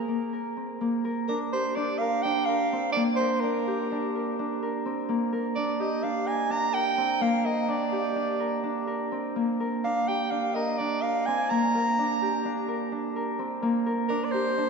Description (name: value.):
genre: contemporary instrumental, chamber music in an uneven meter.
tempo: 253 BPM (eighths).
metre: 9/8.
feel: straight.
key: unclear.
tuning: A4 = 440 Hz.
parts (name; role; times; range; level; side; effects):
breathy soprano saxophone; melody; 0.0-14.7 s; Bb4 to Bb5; -28 LUFS; right 1 dB; none.
Celtic harp; arpeggios; 0.0-14.7 s; Bb3 to Bb4; -27 LUFS; equal; none.
room: wet cathedral reverb, RT60 4.6 s.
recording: recorded in a church or concert hall.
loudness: -25 LUFS.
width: side -4 dB against mid.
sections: 0.8-14.7 A section.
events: none.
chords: 0.0 Bbsus2; 0.8 Gm/Bb.